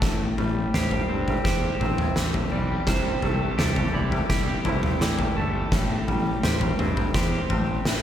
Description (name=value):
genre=post-rock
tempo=84 BPM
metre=4/4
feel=straight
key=unclear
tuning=A4 = 440 Hz
part: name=dark studio string section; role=sustained chords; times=0.0-8.0 s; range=E3 to G4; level=-34 LUFS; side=left 2 dB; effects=none
part: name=electric guitar through a small old amp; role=arpeggios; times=0.0-8.0 s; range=A4 to D5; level=-34 LUFS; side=right 6 dB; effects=digital delay, slapback echo
part: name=twangy electric guitar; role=arpeggios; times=0.0-8.0 s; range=A2 to G4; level=-30 LUFS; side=left 1 dB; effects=wide subtle chorus, digital delay, slapback echo
part: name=fuzz fingered electric bass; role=bass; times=0.0-8.0 s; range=G1 to A2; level=-28 LUFS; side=equal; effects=overdrive
part: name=oversized low-tuned drum kit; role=drums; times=0.0-8.0 s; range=kick drum, snare drum, toms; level=-24 LUFS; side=equal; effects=none
room=moderate concert hall reverb, RT60 1.8 s, studio reverb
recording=big arena sound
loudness=-22 LUFS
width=side -10 dB against mid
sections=0.0-8.0 A section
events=build-up 0.0-8.0; drum fill 0.0-8.0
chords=0.0 Am7; 2.9 C6; 5.7 Am7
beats=| 0.03 0.74 1.45 2.16 | 2.88 3.59 4.30 5.01 | 5.73 6.44 7.15 7.86